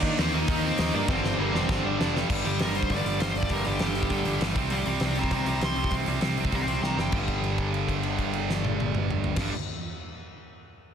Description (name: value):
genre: punk rock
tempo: 198 BPM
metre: 4/4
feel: straight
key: G minor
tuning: A4 = 441 Hz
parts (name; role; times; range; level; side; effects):
- high-gain lead guitar; melody; 0.0-7.1 s; Bb3 to C6; -32 LUFS; equal; distortion
- distorted electric guitar; riff; 0.0-9.5 s; G2 to Eb4; -32 LUFS; left 11 dB; distortion
- distorted electric guitar; riff; 0.0-9.5 s; G2 to Eb4; -30 LUFS; right 12 dB; overdrive
- tight distorted guitar; riff; 0.0-4.6 s; G2 to Eb4; -34 LUFS; equal; distortion
- picked electric bass; bass; 0.0-9.5 s; F1 to Eb3; -31 LUFS; equal; none
- big rock drum kit; drums; 0.0-9.4 s; crash cymbal, hi-hat, kick drum, snare drum, toms; -30 LUFS; equal; none
room: light reverb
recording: dense, heavily limited modern master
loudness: -24 LUFS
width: side -8 dB against mid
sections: 0.0-2.3 A section; 2.3-7.1 B section; 7.1-9.6 C section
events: drum fill 1.1-2.3, 6.8-7.1; lead electric guitar solo 2.3-7.1; held note 7.1-9.4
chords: 0.0 Eb5; 1.1 Gm; 2.3 G5; 4.6 C5; 7.1 G5